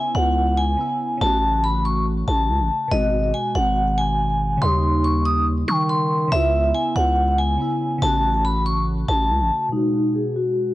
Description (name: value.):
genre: hip hop, trap.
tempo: 141 BPM.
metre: 4/4.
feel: half-time.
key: G# phrygian.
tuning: A4 = 440 Hz.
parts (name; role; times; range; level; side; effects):
vibraphone with hard mallets; melody; 0.0-10.7 s; D#4 to D#6; -21 LUFS; equal; low-pass filter.
glassy digital keys; accompaniment; 0.0-10.7 s; B2 to F#4; -26 LUFS; equal; chorus, low-pass filter.
growling 808-style bass; bass; 0.1-9.5 s; G#1 to D#3; -21 LUFS; equal; none.
room: studio ambience.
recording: dry, gritty hardware recording, cassette tape, low-pass filter.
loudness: -18 LUFS.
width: side -16 dB against mid.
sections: 0.0-9.7 A section; 9.7-10.7 B section.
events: filter sweep 9.7-10.7.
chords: 0.0 C#m7; 1.2 A6; 2.9 G#m7; 4.6 D#7; 6.3 C#m7; 8.0 A6; 9.7 G#m7.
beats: 0.36 0.79 | 1.21 1.64 2.06 2.49 | 2.92 3.34 3.77 4.19 | 4.62 5.04 5.47 5.89 | 6.32 6.74 7.17 7.60 | 8.02 8.45 8.87 9.30 | 9.72 10.15 10.57.